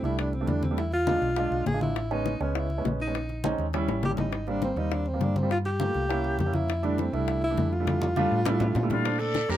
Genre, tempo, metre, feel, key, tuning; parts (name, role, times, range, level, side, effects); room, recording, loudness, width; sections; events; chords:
Afro-Cuban jazz; 203 BPM; 4/4; straight; F major; A4 = 442 Hz
breathy alto saxophone; melody; 0.0-9.6 s; C4 to A4; -30 LUFS; equal
warm upright piano; accompaniment; 0.0-9.6 s; G3 to F4; -30 LUFS; right 3 dB
hollow-body short-scale fingered electric bass; bass; 0.0-9.6 s; Ab1 to Bb2; -30 LUFS; equal
bongos; percussion; 0.0-9.6 s; -34 LUFS; left 7 dB
congas; percussion; 0.0-9.6 s; -33 LUFS; left 1 dB
breathy bright jazz flute; second line; 8.9-9.6 s; F4 to D5; -31 LUFS; left 6 dB
guiro; percussion; 9.1-9.6 s; -38 LUFS; right 6 dB
light reverb; minimal, uncompressed stereo recording; -24 LUFS; side -12 dB against mid
0.0-9.1 A section
drum fill 3.9-4.3, 7.9-9.1
0.0 Fmaj13 (rootless); 0.8 E7b9; 2.0 Amaj9; 3.1 Bbm11; 3.7 Eb7b9; 4.3 Abmaj7; 5.5 Gm7; 6.1 C7b9; 6.7 Fmaj13; 9.1 Bbmaj7